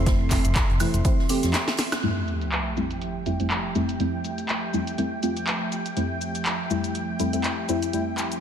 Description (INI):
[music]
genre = deep house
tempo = 122 BPM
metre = 4/4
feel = swing 56% on 16ths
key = F major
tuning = A4 = 441 Hz
[part]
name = hollow soft pad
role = sustained chords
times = 0.0-8.4 s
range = F3 to E5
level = -33 LUFS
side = right 2 dB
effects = chorus, sidechain pumping
[part]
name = deep mellow chord stab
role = stabs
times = 0.0-8.4 s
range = F2 to G4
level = -27 LUFS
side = left 1 dB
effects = chorus, sidechain pumping, ping-pong delay
[part]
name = smooth gliding synth bass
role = bass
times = 0.0-1.5 s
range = F1 to F2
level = -24 LUFS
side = equal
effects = sidechain pumping
[part]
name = soft string machine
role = texture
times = 0.0-8.4 s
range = G5 to C6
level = -36 LUFS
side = equal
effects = ensemble chorus, sidechain pumping
[part]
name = electronic kick drum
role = drums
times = 0.1-1.2 s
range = none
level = -22 LUFS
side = equal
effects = overdrive
[part]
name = punchy analog drum machine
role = drums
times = 0.1-8.4 s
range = cabasa, handclaps, hi-hat, snare drum, woodblock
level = -29 LUFS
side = equal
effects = low-pass filter on hats, low-pass filter on perc, low-pass filter on snare, low-pass filter on room
[part]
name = soft-mallet drum kit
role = drums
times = 0.1-2.0 s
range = hi-hat, snare drum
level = -38 LUFS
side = right 2 dB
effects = sidechain pumping on hats, high-pass filter on hats, high-pass filter on snare, high-pass filter on room
[part]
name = sub drop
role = sound effects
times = 2.0-4.0 s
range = none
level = -32 LUFS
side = equal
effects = none
[sound]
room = moderate echo chamber reverb, RT60 2.4 s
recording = none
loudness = -22 LUFS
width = side -8 dB against mid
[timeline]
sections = 0.0-2.0 A section; 2.0-8.4 B section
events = break 1.5-2.0; drum fill 1.5-2.0; band accent 1.9; impact 2.0-4.0; filter sweep on synth stab 2.0-8.4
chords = 0.0 Fmaj9